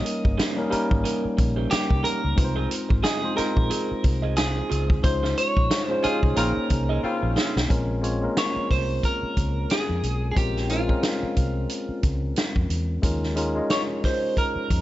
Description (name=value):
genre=lush 1970s-style soul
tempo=90 BPM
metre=4/4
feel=swing 58% on 16ths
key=Bb dorian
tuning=A4 = 441 Hz
part: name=clean electric guitar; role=melody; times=0.0-14.8 s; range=F4 to Eb5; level=-28 LUFS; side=right 1 dB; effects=lush chorus, tape echo
part: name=mellow tine electric piano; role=accompaniment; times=0.0-14.8 s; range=G3 to Eb5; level=-28 LUFS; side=left 1 dB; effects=overdrive
part: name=electric guitar through a small old amp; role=riff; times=0.0-7.6 s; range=Db4 to Eb5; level=-34 LUFS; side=right 6 dB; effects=spring reverb
part: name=vintage drum kit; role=drums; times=0.1-14.8 s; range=hi-hat, kick drum, snare drum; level=-25 LUFS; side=equal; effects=none
part: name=vintage muted fingered electric bass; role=bass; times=0.2-14.8 s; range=G1 to F2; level=-26 LUFS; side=equal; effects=none
part: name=warm horn section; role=stabs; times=6.0-7.5 s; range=C3 to F4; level=-31 LUFS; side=left 3 dB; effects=tape echo
room=small room ambience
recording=nothing above 7.8 kHz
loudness=-21 LUFS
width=side -15 dB against mid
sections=0.0-7.7 A section; 7.7-14.8 B section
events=band accent 5.0-7.7; drum fill 7.0-7.7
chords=0.0 Eb7; 2.4 Ab6; 5.0 Dbmaj9; 6.4 Bbm11; 7.7 Bbm9; 13.0 Eb9sus4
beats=0.39 1.06 1.72 | 2.38 3.05 3.71 4.38 | 5.04 5.71 6.37 7.04 | 7.70 8.37 9.03 9.70 | 10.37 11.03 11.70 12.37 | 13.03 13.70 14.37